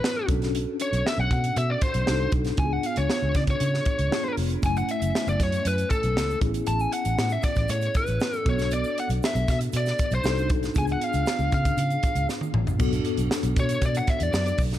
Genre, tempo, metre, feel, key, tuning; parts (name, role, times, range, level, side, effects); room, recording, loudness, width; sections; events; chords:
polished 1980s jazz-funk pop; 117 BPM; 4/4; straight; A4 = 440 Hz
biting lead guitar; melody; 0.0-14.6 s; A4 to A5; -28 LUFS; equal; overdrive
mellow tine electric piano; accompaniment; 0.0-14.8 s; A3 to G#5; -31 LUFS; left 2 dB; medium stereo tremolo, wide subtle chorus
crisp fusion drum kit; drums; 0.0-14.8 s; crash cymbal, hi-hat, kick drum, snare drum, toms; -27 LUFS; equal
vintage muted fingered electric bass; bass; 0.3-14.8 s; E#1 to C#3; -26 LUFS; equal
tube shaker; percussion; 4.6-14.8 s; -48 LUFS; right 12 dB
light reverb, studio ambience; dark, warm production; -22 LUFS; side -12 dB against mid
0.0-12.8 A section; 12.8-14.8 B section
drum fill 12.3-12.8
0.3 Bm9; 2.1 Cdim7; 2.6 C#7b9; 4.6 F#m9; 6.4 Amaj7; 8.5 Bm7; 10.2 Cdim7; 10.8 C#7b9; 12.8 Bm7